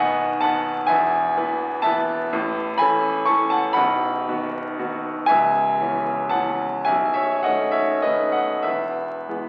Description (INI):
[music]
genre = classical, romantic nocturne for solo piano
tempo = 32-44 BPM (dotted quarters)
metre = 6/8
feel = rubato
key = unclear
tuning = A4 = 440 Hz
[part]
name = bright grand piano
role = solo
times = 0.0-9.5 s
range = B0 to C#6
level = -22 LUFS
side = equal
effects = none
[sound]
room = wet recital hall reverb, RT60 1.5 s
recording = very old 78 rpm record, vinyl crackle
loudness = -22 LUFS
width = mono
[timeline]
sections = 0.0-9.5 A section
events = none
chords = 0.0 B; 0.9 E; 2.3 A; 3.8 B; 5.3 C#m7; 6.9 B9; 8.7 E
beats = 0.91 | 2.33 3.77 | 5.29 6.88 | 8.66